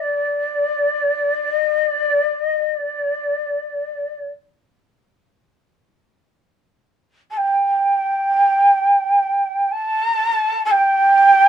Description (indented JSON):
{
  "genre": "japanese traditional, Japanese chamber music",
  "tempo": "free time",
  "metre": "none",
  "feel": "none",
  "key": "unclear",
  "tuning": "A4 = 440 Hz",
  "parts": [
    { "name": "breathy shakuhachi", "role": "solo", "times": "0.0-11.5 s", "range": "D5 to A5", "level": "-15 LUFS", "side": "equal", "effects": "none" }
  ],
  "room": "moderate studio ambience, RT60 0.5 s",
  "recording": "dark, warm production",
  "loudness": "-16 LUFS",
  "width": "side -9 dB against mid",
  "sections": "0.0-11.5 A section",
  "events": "none",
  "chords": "none"
}